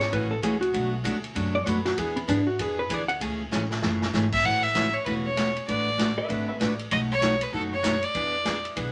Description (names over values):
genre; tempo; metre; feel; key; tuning
country, western swing; 194 BPM; 4/4; swing 61% on 8ths; A major; A4 = 440 Hz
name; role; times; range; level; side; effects
hollow-body jazz guitar; second line; 0.0-4.1 s; B3 to G#5; -29 LUFS; equal; none
upright bass; bass; 0.0-8.9 s; E1 to G#2; -36 LUFS; equal; none
vintage drum kit; drums; 0.0-8.9 s; crash cymbal, hi-hat, kick drum, ride cymbal, snare drum; -36 LUFS; equal; none
picked steel-string acoustic guitar; accompaniment; 0.1-8.9 s; B2 to B4; -31 LUFS; equal; none
clear fiddle; melody; 4.3-8.6 s; A4 to F#5; -28 LUFS; equal; none
clean lap steel guitar; second line; 6.2-6.8 s; B4 to E5; -35 LUFS; equal; none
room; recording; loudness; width
moderate studio ambience, RT60 0.5 s; none; -26 LUFS; mono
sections
0.0-4.4 A section; 4.4-8.9 B section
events
hollow-body jazz guitar solo 0.0-4.4; drum fill 3.5-4.1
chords
0.0 F#m7; 0.7 Bm7; 2.0 E7; 3.2 Amaj7; 4.4 A6; 5.7 D6/A; 6.9 B7; 8.1 E7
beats
0.12 0.43 | 0.74 1.05 1.36 1.67 | 1.97 2.28 2.59 2.90 | 3.21 3.52 3.83 4.13 | 4.44 4.75 5.06 5.37 | 5.68 5.99 6.29 6.60 | 6.91 7.22 7.53 7.84 | 8.14 8.45 8.76